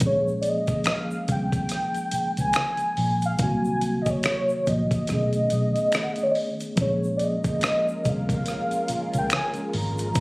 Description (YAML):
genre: R&B, neo-soul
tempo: 71 BPM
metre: 4/4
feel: swing 60% on 16ths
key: Bb minor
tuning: A4 = 440 Hz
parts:
  - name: mellow tine electric piano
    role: accompaniment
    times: 0.0-10.2 s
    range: C3 to Ab4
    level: -29 LUFS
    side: equal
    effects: medium stereo tremolo
  - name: vintage muted fingered electric bass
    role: bass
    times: 0.0-10.2 s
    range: Ab1 to Db2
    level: -27 LUFS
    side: equal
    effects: none
  - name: dusty soul sampler-style drum kit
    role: drums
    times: 0.0-10.2 s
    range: hi-hat, kick drum, rim click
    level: -27 LUFS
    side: equal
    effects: none
  - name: egg shaker and finger snaps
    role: percussion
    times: 0.0-10.2 s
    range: none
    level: -36 LUFS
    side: equal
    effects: none
  - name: warm velvety synth lead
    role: melody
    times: 0.1-10.2 s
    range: Db5 to Bb5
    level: -26 LUFS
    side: equal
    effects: chorus, slapback echo
  - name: soft string machine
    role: sustained chords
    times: 7.4-10.2 s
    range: Ab3 to Bb4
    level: -33 LUFS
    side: equal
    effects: phaser, ensemble chorus
room: light reverb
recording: recorded on a phone in the room, studio reverb, compression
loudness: -22 LUFS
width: side -24 dB against mid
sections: 0.0-10.2 A section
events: none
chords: 0.0 Bbm7; 3.4 Cm7b5; 5.1 B13; 6.8 Bbm7